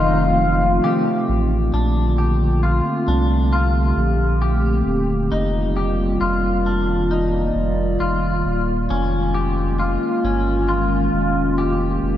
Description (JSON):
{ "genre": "dream pop", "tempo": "67 BPM", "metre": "4/4", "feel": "straight", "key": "Bb major", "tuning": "A4 = 440 Hz", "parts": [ { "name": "warbly nostalgic lead", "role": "melody", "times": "0.0-1.3 s", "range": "F5", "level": "-23 LUFS", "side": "left 3 dB", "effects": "chorus, diffuse ambient delay" }, { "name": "mellow electric guitar", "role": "accompaniment", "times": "0.0-2.2 s", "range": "F2 to Eb4", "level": "-25 LUFS", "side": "right 2 dB", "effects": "tremolo, wide subtle chorus" }, { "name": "warbly tape-like pad", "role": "sustained chords", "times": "0.0-12.2 s", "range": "D3 to D5", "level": "-21 LUFS", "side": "equal", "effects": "chorus, built-in reverb" }, { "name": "clean electric guitar", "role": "arpeggios", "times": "0.0-12.2 s", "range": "Db4 to G4", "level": "-24 LUFS", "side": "left 2 dB", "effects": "wide subtle chorus, diffuse ambient delay" }, { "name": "warm sub bass", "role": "bass", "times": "0.0-12.2 s", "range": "Eb1 to C2", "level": "-21 LUFS", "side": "equal", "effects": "none" } ], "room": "wet lush hall reverb, RT60 2.9 s", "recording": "dreamy mix soaked in reverb", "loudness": "-17 LUFS", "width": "side -12 dB against mid", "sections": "0.0-1.7 A section; 1.7-12.2 B section", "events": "none", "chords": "0.0 F7; 1.7 Bbmaj9; 5.3 F9sus4; 8.9 Db69/F", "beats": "0.83 | 1.73 2.63 3.52 4.42 | 5.31 6.21 7.10 8.00 | 8.89 9.79 10.69 11.58" }